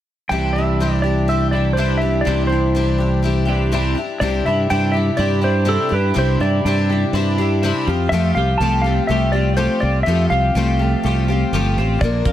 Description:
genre	folk rock and heartland rock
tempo	123 BPM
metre	4/4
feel	straight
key	C major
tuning	A4 = 440 Hz
part	clean lap steel guitar	melody	0.3-12.3 s	A4 to A5	-22 LUFS	equal	none
part	picked twelve-string acoustic guitar	accompaniment	0.3-12.3 s	Bb2 to Bb4	-23 LUFS	left 5 dB	none
part	twelve-string electric guitar	riff	0.3-12.3 s	Bb2 to G4	-23 LUFS	right 2 dB	wide subtle chorus
part	fingered electric bass	bass	0.3-12.3 s	G1 to G2	-18 LUFS	right 1 dB	none
part	damped 70s drum kit	drums	12.0-12.3 s	hi-hat, kick drum	-19 LUFS	equal	none
room	light reverb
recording	none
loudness	-15 LUFS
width	side -12 dB against mid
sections	0.3-4.2 A section; 4.2-12.3 B section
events	none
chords	0.3 Cadd9; 4.0 Dsus24; 4.2 Cadd9; 7.9 Fadd9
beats	| 0.30 0.79 1.28 1.77 | 2.26 2.75 3.24 3.73 | 4.22 4.70 5.19 5.68 | 6.17 6.66 7.14 7.63 | 8.12 8.61 9.09 9.58 | 10.07 10.55 11.04 11.53 | 12.02

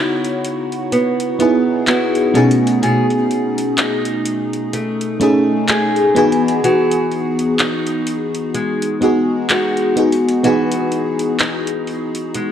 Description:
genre	contemporary R&B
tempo	63 BPM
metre	4/4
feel	swing 58% on 16ths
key	E major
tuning	A4 = 440 Hz
part	FM electric piano with soft pad layer	accompaniment	0.0-12.5 s	A3 to F#5	-17 LUFS	left 1 dB	chorus, phaser
part	fingerpicked steel-string acoustic guitar	arpeggios	0.0-12.5 s	B2 to G#4	-19 LUFS	equal	none
part	smooth R&B drum kit	drums	0.2-12.5 s	handclaps, hi-hat	-21 LUFS	equal	none
room	moderate concert hall reverb, RT60 2.3 s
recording	worn, warbling old tape, cassette tape, warbly pitch drift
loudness	-14 LUFS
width	side -9 dB against mid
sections	0.0-12.5 A section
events	break 0.0-12.5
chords	0.0 C#m11; 2.4 B13; 6.2 Emaj9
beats	0.92 1.87 | 2.83 3.78 4.73 5.68 | 6.64 7.59 8.54 9.49 | 10.45 11.40 12.35

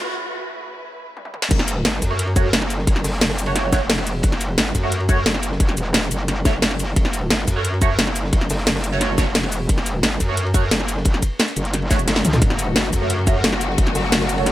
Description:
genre	dark technical drum and bass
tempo	176 BPM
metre	4/4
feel	straight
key	F# phrygian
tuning	A4 = 441 Hz
part	warm studio string section	sustained chords	0.0-1.5, 12.4-14.5 s	C#3 to B4	-27 LUFS	left 3 dB	sidechain pumping
part	drum and bass drum kit	drums	1.2-14.5 s	crash cymbal, hi-hat, shaker, snare drum, toms	-20 LUFS	equal	none
part	metallic wobble bass	bass	1.5-14.5 s	E1 to F#2	-22 LUFS	equal	distortion, chorus, sidechain pumping
part	crunchy breakbeat drum kit	drums	1.5-14.5 s	hi-hat, ride cymbal, snare drum	-31 LUFS	equal	none
part	electronic kick drum	drums	1.5-13.8 s	none	-18 LUFS	equal	none
part	band-passed chord stab	stabs	2.1-14.5 s	A3 to C#5	-27 LUFS	right 3 dB	phaser, lush chorus, tape echo
room	small room ambience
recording	high-pass filter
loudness	-17 LUFS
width	side -14 dB against mid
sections	0.0-1.5 A section; 1.5-14.5 B section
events	build-up 0.0-1.5; filter sweep 0.0-1.5; break 0.1-1.5; drum fill 1.2-1.5, 12.1-12.4; drop 1.5-14.5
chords	0.0 F#m (rootless); 1.5 F#m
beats	| 0.15 0.49 0.83 1.17 | 1.51 1.85 2.19 2.53 | 2.87 3.21 3.56 3.90 | 4.24 4.58 4.92 5.26 | 5.60 5.94 6.28 6.62 | 6.96 7.30 7.65 7.99 | 8.33 8.67 9.01 9.35 | 9.69 10.03 10.37 10.71 | 11.05 11.40 11.74 12.08 | 12.42 12.76 13.10 13.44 | 13.78 14.12 14.46

